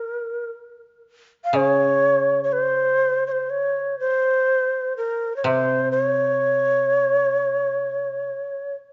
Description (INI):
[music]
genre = japanese traditional, Japanese chamber music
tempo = 57-65 BPM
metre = 4/4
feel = rubato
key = unclear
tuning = A4 = 438 Hz
[part]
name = mellow shakuhachi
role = melody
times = 0.0-8.7 s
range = Bb4 to F5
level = -22 LUFS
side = equal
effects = none
[part]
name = koto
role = accompaniment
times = 1.5-8.3 s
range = C3 to Db3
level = -30 LUFS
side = equal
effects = none
[sound]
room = light reverb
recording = nothing above 7.5 kHz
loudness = -21 LUFS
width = mono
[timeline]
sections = 0.0-1.5 A section; 1.5-8.9 B section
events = none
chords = none